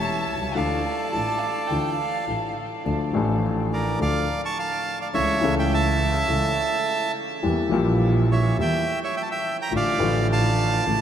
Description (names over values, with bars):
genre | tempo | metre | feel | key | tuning
tango | 105 BPM | 4/4 | rubato | D harmonic minor | A4 = 440 Hz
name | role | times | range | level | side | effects
bandoneon | melody | 0.0-11.0 s | A4 to C#6 | -25 LUFS | right 3 dB | none
warm violin | second line | 0.0-2.5 s | F5 to A5 | -32 LUFS | left 1 dB | none
warm concert grand piano | accompaniment | 0.0-11.0 s | E1 to A4 | -25 LUFS | left 3 dB | none
dark double bass | bass | 0.0-11.0 s | E1 to E2 | -26 LUFS | right 2 dB | none
room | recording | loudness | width
wet huge ambient reverb, RT60 8.4 s | in a vast, echoing space | -21 LUFS | side -9 dB against mid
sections
0.0-2.9 A section; 2.9-11.0 B section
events
none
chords
0.0 A7; 0.6 Dmadd9; 2.9 Dm; 5.2 A/C#; 7.4 Edim; 9.7 Dm/A